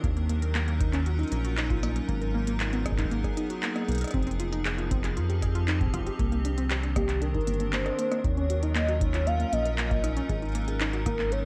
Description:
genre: IDM.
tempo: 117 BPM.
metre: 4/4.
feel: straight.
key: unclear.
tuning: A4 = 441 Hz.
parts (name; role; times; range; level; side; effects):
icy glass pad; sustained chords; 0.0-11.5 s; Eb3 to Bb4; -37 LUFS; equal; chorus, built-in reverb.
warbly dusty pluck; arpeggios; 0.0-11.4 s; Bb3 to Bb4; -36 LUFS; equal; chorus, tape echo.
round analog bass; bass; 0.0-11.5 s; F1 to F2; -31 LUFS; equal; none.
electronic kick drum; drums; 0.0-11.2 s; none; -33 LUFS; equal; none.
organic electronic drum kit; drums; 0.0-11.4 s; handclaps, hi-hat, rim click; -37 LUFS; equal; none.
warm velvety synth lead; melody; 7.0-11.5 s; G4 to F5; -34 LUFS; equal; chorus, delay.
room: light reverb.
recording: worn, warbling old tape, cassette tape, warbly pitch drift.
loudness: -28 LUFS.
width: mono.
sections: 0.0-11.5 A section.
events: none.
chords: 0.0 Ebm9; 2.1 Abm9; 4.1 Fm9; 6.2 Cm9; 8.0 Ebm9; 10.3 Abm9.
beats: | 0.04 0.55 1.06 1.58 | 2.09 2.60 3.11 3.63 | 4.14 4.65 5.17 5.68 | 6.19 6.70 7.22 7.73 | 8.24 8.76 9.27 9.78 | 10.29 10.81 11.32.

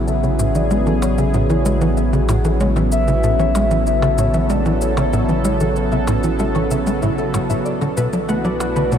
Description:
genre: ambient, sequencer-driven space music.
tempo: 95 BPM.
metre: 4/4.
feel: straight.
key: unclear.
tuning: A4 = 440 Hz.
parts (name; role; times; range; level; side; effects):
soft octave-layered synth lead; melody; 0.0-9.0 s; B4 to E5; -24 LUFS; left 2 dB; chorus, phaser, tape echo.
lush unison pad; sustained chords; 0.0-9.0 s; B2 to A4; -20 LUFS; right 1 dB; chorus.
warm sub bass; bass; 0.0-9.0 s; A1 to B1; -21 LUFS; equal; none.
warbly dusty pluck; arpeggios; 0.1-8.9 s; E4 to F#5; -28 LUFS; left 2 dB; chorus, auto-pan, tape echo.
cabasa and percussion blips; percussion; 0.1-9.0 s; none; -33 LUFS; equal; tape echo.
tight sequencer bass; riff; 0.2-9.0 s; A2 to A3; -21 LUFS; equal; lush chorus, tape echo.
room: moderate huge ambient reverb, RT60 8.1 s.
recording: dreamy mix soaked in reverb.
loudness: -15 LUFS.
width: side -8 dB against mid.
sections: 0.0-9.0 A section.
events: none.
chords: 0.0 A; 7.7 Bm.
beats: | 0.08 0.71 1.34 1.97 | 2.60 3.23 3.87 4.50 | 5.13 5.76 6.39 7.03 | 7.66 8.29 8.92.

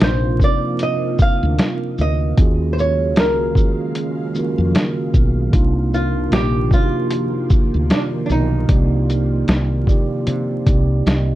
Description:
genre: lo-fi hip hop.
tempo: 76 BPM.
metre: 4/4.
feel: swing 59% on 16ths.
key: C minor.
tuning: A4 = 441 Hz.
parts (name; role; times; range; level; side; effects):
flamenco guitar; melody; 0.0-11.0 s; D4 to F5; -23 LUFS; right 1 dB; low-pass filter.
mellow tine electric piano; accompaniment; 0.0-11.4 s; C3 to Eb5; -22 LUFS; right 2 dB; medium stereo tremolo, cassette tape, low-pass filter.
soft string machine; sustained chords; 0.0-11.4 s; Db3 to F5; -28 LUFS; left 1 dB; ensemble chorus, low-pass filter.
woody fretless electric bass; bass; 0.0-11.4 s; Bb1 to C3; -19 LUFS; equal; lush chorus.
lo-fi sampler-style drum kit; drums; 0.0-11.3 s; hi-hat, kick drum, shaker, snare drum; -16 LUFS; equal; none.
room: light reverb.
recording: dark, warm production, vinyl crackle, nothing above 10.9 kHz.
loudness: -15 LUFS.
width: side -15 dB against mid.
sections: 0.0-11.4 A section.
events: none.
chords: 0.0 Cm11; 2.4 Ebm11; 5.5 Cm11.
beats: 0.01 0.80 1.59 | 2.38 3.17 3.95 4.74 | 5.53 6.32 7.11 7.90 | 8.69 9.48 10.27 11.06.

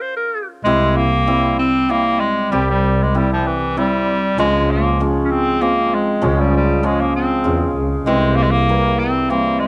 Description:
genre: klezmer.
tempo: 97 BPM.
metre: 3/4.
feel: straight.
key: C phrygian dominant.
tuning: A4 = 440 Hz.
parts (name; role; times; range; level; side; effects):
bright clarinet; melody; 0.0-9.7 s; E3 to C5; -20 LUFS; equal; cassette tape.
muted double bass; bass; 0.6-9.2 s; C2 to E2; -23 LUFS; equal; none.
hammered dulcimer; accompaniment; 0.7-9.7 s; Db3 to G4; -22 LUFS; equal; none.
room: moderate booth ambience, RT60 0.2 s.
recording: home recording on cassette.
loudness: -17 LUFS.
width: mono.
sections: 0.6-9.7 A section.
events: stop 0.0-0.6.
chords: 0.0 N.C.; 0.6 C; 4.4 Db; 8.1 C.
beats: 0.01 | 0.64 1.26 1.89 | 2.51 3.13 3.75 | 4.37 4.99 5.61 | 6.23 6.84 7.46 | 8.07 8.69 9.30.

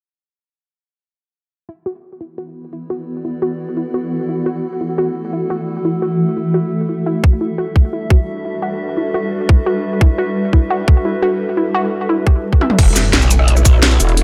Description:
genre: dark technical drum and bass.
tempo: 173 BPM.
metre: 4/4.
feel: straight.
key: E minor.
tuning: A4 = 441 Hz.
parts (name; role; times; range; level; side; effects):
swarming drone; sustained chords; 2.8-14.2 s; E3 to A4; -24 LUFS; equal; built-in reverb, sidechain pumping.
warbly dusty pluck; arpeggios; 1.7-12.7 s; E4 to E5; -24 LUFS; equal; chorus, sidechain pumping, delay.
warbly tape-like pad; texture; 2.6-14.2 s; G3 to E5; -28 LUFS; equal; chorus, built-in reverb, sidechain pumping.
electronic kick drum; drums; 7.2-13.7 s; none; -12 LUFS; equal; none.
drum and bass drum kit; drums; 12.6-14.2 s; cabasa, crash cymbal, hi-hat, rim click, snare drum, toms; -18 LUFS; equal; none.
growl bass; bass; 12.8-14.2 s; E1 to B1; -15 LUFS; equal; chorus, overdrive.
impact; sound effects; 12.8-14.2 s; none; -22 LUFS; equal; none.
room: light reverb.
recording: none.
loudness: -16 LUFS.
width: mono.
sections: 1.7-12.8 A section; 12.8-14.2 B section.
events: fade-in on ambient pad 1.7-12.8; filter sweep on synth arpeggio sound 1.7-12.8; drum fill 12.6; drop 12.8-14.2; impact 12.8-14.2.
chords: 1.7 E5; 7.2 G; 12.8 E7(no3).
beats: | 1.69 2.03 2.38 2.73 | 3.08 3.42 3.77 4.12 | 4.46 4.81 5.16 5.50 | 5.85 6.20 6.54 6.89 | 7.24 7.58 7.93 8.28 | 8.62 8.97 9.32 9.66 | 10.01 10.36 10.71 11.05 | 11.40 11.74 12.09 12.44 | 12.79 13.13 13.48 13.83 | 14.17.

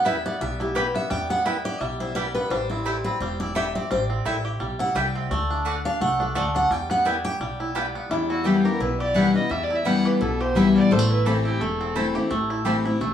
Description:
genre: bluegrass.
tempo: 172 BPM.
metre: 4/4.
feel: swing 55% on 8ths.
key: E minor.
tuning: A4 = 437 Hz.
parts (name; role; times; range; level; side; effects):
picked steel-string acoustic guitar; accompaniment; 0.0-13.1 s; E2 to G5; -23 LUFS; left 2 dB; none.
bluegrass banjo; arpeggios; 0.0-13.1 s; G3 to G4; -29 LUFS; right 1 dB; none.
mandolin; stabs; 0.0-12.8 s; A3 to A5; -29 LUFS; right 3 dB; none.
upright bass; bass; 0.0-13.1 s; E1 to E2; -31 LUFS; equal; none.
lap resonator guitar; second line; 8.1-13.1 s; E4 to A4; -30 LUFS; left 2 dB; none.
warm fiddle; melody; 8.3-12.3 s; F#4 to F#5; -26 LUFS; right 1 dB; none.
room: wet small room reverb, RT60 0.5 s.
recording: heard from further back in the room, studio ambience.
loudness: -21 LUFS.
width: side -9 dB against mid.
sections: 0.0-8.1 A section; 8.1-13.1 B section.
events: steel-string acoustic guitar solo 0.0-8.1.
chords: 0.0 Em; 2.5 Am7; 5.3 D; 6.7 Em; 10.9 Am.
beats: 0.06 0.41 0.76 | 1.11 1.46 1.81 2.16 | 2.51 2.86 3.21 3.56 | 3.91 4.26 4.61 4.96 | 5.31 5.66 6.00 6.36 | 6.71 7.05 7.41 7.75 | 8.11 8.46 8.81 9.16 | 9.51 9.86 10.21 10.56 | 10.91 11.26 11.61 11.96 | 12.31 12.66 13.01.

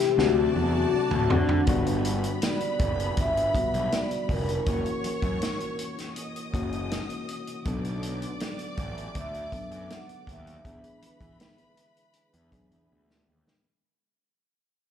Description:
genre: lush 1970s-style soul.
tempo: 80 BPM.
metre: 4/4.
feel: straight.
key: G major.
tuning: A4 = 440 Hz.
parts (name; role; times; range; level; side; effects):
vibraphone with soft mallets; melody; 0.0-13.3 s; F#4 to F#5; -28 LUFS; left 3 dB; none.
rich studio string section; second line; 0.0-13.6 s; B3 to Eb6; -37 LUFS; equal; slapback echo.
reed electric piano; accompaniment; 0.0-13.7 s; D3 to A4; -32 LUFS; left 4 dB; spring reverb, slapback echo.
percussive tonewheel organ; sustained chords; 0.0-13.6 s; C3 to F#4; -39 LUFS; right 2 dB; none.
fuzz picked electric bass; bass; 0.2-13.4 s; F1 to E3; -30 LUFS; right 1 dB; overdrive.
vintage drum kit; drums; 0.2-13.6 s; hi-hat, kick drum, snare drum, toms; -30 LUFS; equal; none.
room: light reverb, small room ambience.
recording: live gig heard through the venue's PA, club reverb.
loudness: -25 LUFS.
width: side -8 dB against mid.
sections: 0.0-1.7 A section; 1.7-13.6 B section.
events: drum fill 0.2-1.7, 12.9-13.6; fade-out 1.7-13.6.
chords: 0.2 D7; 1.7 Gmaj7; 4.7 F#7; 7.7 Bm7; 10.6 E7.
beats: 0.18 0.92 | 1.67 2.42 3.17 3.91 | 4.66 5.41 6.16 6.91 | 7.65 8.40 9.15 9.90 | 10.65 11.40 12.15 12.90.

